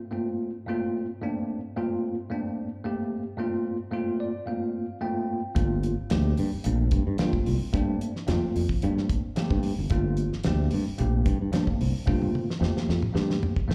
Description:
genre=electric jazz fusion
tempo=111 BPM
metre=4/4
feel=straight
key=G minor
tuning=A4 = 441 Hz
part: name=bell-like tine electric piano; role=accompaniment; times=0.1-13.7 s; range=G2 to G5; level=-31 LUFS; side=equal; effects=slapback echo
part: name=fingered electric bass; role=bass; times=5.6-13.7 s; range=G1 to G2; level=-28 LUFS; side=equal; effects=none
part: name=damped 70s drum kit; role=drums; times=5.6-13.7 s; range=hi-hat, kick drum, snare drum, toms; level=-31 LUFS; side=equal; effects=none
room=light reverb, small room ambience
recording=live gig heard through the venue's PA, club ambience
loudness=-27 LUFS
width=mono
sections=0.0-13.7 A section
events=tine electric piano fill 3.9-5.6; drum fill 12.1-13.7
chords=0.0 Gm11

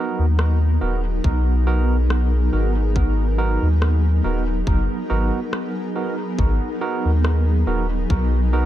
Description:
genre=ambient dub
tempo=70 BPM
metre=4/4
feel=swing 55% on 16ths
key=G# minor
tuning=A4 = 439 Hz
part: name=granular cloud pad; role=sustained chords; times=0.0-8.7 s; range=F#3 to A#4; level=-26 LUFS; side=equal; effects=built-in reverb
part: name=barky tine electric piano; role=stabs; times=0.0-8.7 s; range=B3 to A#4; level=-27 LUFS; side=right 4 dB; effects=dub echo
part: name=soft dub sub bass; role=bass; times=0.2-8.7 s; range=D#1 to D#2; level=-18 LUFS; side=equal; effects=none
part: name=electronic rim click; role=drums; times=0.4-7.4 s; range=none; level=-30 LUFS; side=left 2 dB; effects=dub echo
part: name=electronic kick drum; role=drums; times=1.2-8.3 s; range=none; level=-21 LUFS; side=equal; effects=none
room=digital ambience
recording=dark, warm production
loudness=-18 LUFS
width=side -13 dB against mid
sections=0.0-8.7 A section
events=none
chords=0.0 G#m9

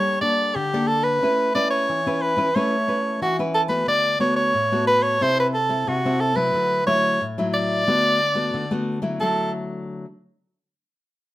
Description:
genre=samba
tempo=90 BPM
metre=4/4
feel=straight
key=D major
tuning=A4 = 441 Hz
part: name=bright soprano saxophone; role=melody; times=0.0-9.5 s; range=F#4 to D5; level=-20 LUFS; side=equal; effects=none
part: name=nylon-string guitar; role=accompaniment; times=0.0-10.0 s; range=A2 to B4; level=-24 LUFS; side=left 1 dB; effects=none
room=moderate studio reverb, RT60 0.8 s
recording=none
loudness=-19 LUFS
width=side -15 dB against mid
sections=0.0-3.9 A section; 3.9-9.2 B section; 9.2-11.3 C section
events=none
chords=0.0 Gmadd9; 1.2 Aadd9; 3.9 D6; 5.2 Am/C; 6.5 Dadd9; 7.9 Bm7/D; 9.2 Dadd9

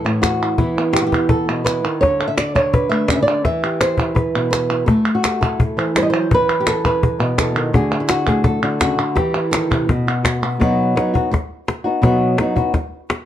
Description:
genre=flamenco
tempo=168 BPM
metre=4/4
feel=straight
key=unclear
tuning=A4 = 439 Hz
part: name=flamenco guitar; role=melody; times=0.0-12.8 s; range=A2 to E5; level=-17 LUFS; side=equal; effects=plate reverb
part: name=palmas hand claps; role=percussion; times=0.1-10.6 s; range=none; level=-23 LUFS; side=right 3 dB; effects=none
part: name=cajon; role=percussion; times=0.2-13.3 s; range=none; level=-19 LUFS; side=left 1 dB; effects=none
room=moderate studio reverb, RT60 0.5 s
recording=dark, warm production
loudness=-15 LUFS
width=side -11 dB against mid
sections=0.0-10.6 A section; 10.6-13.3 B section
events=none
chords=0.0 Am; 0.6 E5; 2.0 D5; 3.5 Em; 4.9 Am7; 6.3 E5; 7.7 D; 9.2 Em; 9.9 B5; 10.6 B

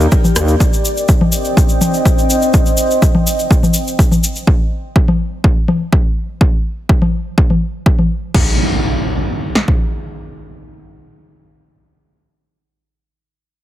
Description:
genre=melodic techno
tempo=124 BPM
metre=4/4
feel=straight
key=unclear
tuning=A4 = 441 Hz
part: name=deep dark ambient pad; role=sustained chords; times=0.0-4.4 s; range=C4 to G5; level=-18 LUFS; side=equal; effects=chorus, built-in reverb, sidechain pumping
part: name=gritty driven synth bass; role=bass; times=0.0-0.6 s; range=Eb2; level=-12 LUFS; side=equal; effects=sidechain pumping
part: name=egg shaker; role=percussion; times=0.0-4.5 s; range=none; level=-22 LUFS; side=left 2 dB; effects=none
part: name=rich chamber string section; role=texture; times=0.0-0.6 s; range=Eb4 to G5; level=-30 LUFS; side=right 2 dB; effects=sidechain pumping
part: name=punchy analog drum machine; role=drums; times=0.1-9.8 s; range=kick drum, snare drum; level=-12 LUFS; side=equal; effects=none
part: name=punchy analog drum machine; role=drums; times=0.2-8.4 s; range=congas, crash cymbal, hi-hat, rim click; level=-18 LUFS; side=left 2 dB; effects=none
part: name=impact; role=sound effects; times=8.3-12.8 s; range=none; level=-19 LUFS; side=equal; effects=none
room=light reverb, digital ambience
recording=heavily compressed radio sound, multiband compression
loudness=-12 LUFS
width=side -13 dB against mid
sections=0.0-8.3 A section; 8.3-12.2 B section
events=none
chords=0.0 Eb; 0.6 Cmadd9; 4.5 N.C.

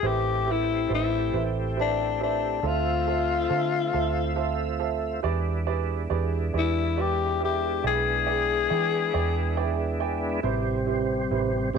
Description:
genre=slow blues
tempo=46 BPM (dotted quarters)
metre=12/8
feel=straight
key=A minor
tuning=A4 = 440 Hz
part: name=growling tenor saxophone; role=melody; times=0.0-10.0 s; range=D4 to G#4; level=-26 LUFS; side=left 10 dB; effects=slapback echo
part: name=clear upright piano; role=accompaniment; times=0.0-11.8 s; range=G#3 to G#5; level=-31 LUFS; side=right 16 dB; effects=none
part: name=tonewheel organ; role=sustained chords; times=0.0-11.8 s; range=C3 to E5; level=-31 LUFS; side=right 1 dB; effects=slow rotary speaker, chorus vibrato
part: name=vintage muted fingered electric bass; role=bass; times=0.0-11.8 s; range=A1 to E3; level=-29 LUFS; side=right 2 dB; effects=none
room=light reverb, studio ambience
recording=1960s-style stereo with parts hard left and right, nothing above 10.4 kHz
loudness=-23 LUFS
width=side -6 dB against mid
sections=0.0-10.4 A section; 10.4-11.8 B section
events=upright piano fill 9.1-10.4; tonewheel organ solo 10.4-11.8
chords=0.0 Am7; 2.6 Dm7; 5.2 E7#9; 10.4 Am7

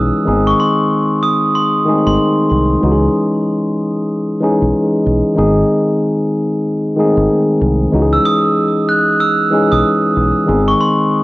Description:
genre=hip hop, boom-bap hip-hop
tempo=94 BPM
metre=4/4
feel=swing 61% on 16ths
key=C# harmonic minor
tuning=A4 = 440 Hz
part: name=glockenspiel with brass mallets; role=melody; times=0.0-2.2, 8.1-11.2 s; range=B#5 to F#6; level=-16 LUFS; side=right 1 dB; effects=high-pass filter, low-pass filter, cassette tape, analog delay
part: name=tine electric piano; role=accompaniment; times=0.0-11.2 s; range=D#3 to G#4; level=-13 LUFS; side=left 1 dB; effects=high-pass filter, low-pass filter, cassette tape
part: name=deep dub fingered electric bass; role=bass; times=0.0-10.7 s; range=G#1 to C#2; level=-17 LUFS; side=equal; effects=none
room=moderate spring reverb, RT60 1.7 s, small room ambience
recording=home recording on cassette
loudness=-12 LUFS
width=side -19 dB against mid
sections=0.0-11.2 A section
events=none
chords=0.3 G#; 2.8 C#madd9; 5.4 G#; 7.9 C#madd9; 10.5 G#

